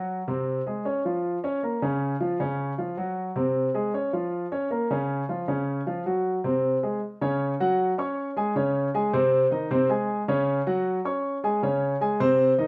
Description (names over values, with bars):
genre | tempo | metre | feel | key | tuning
latin | 156 BPM | 4/4 | straight | unclear | A4 = 440 Hz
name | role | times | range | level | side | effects
warm concert grand piano | solo | 0.0-12.7 s | C3 to Db6 | -26 LUFS | equal | slapback echo
room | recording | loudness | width
light reverb | recorded outdoors, with no room sound | -26 LUFS | mono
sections
0.0-7.0 A section; 7.0-12.7 B section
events
none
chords
0.1 Ab7; 0.9 Db/F; 1.6 Db6; 2.4 Dbadd11; 3.2 Ab7; 3.9 Db/F; 4.7 Db6; 5.5 Dbadd11; 6.3 Ab7; 7.0 Dbsus4; 7.8 Gbsus2; 8.6 Abadd11; 9.3 Ab; 10.1 Dbsus4; 10.9 Gbsus2; 11.6 Abadd11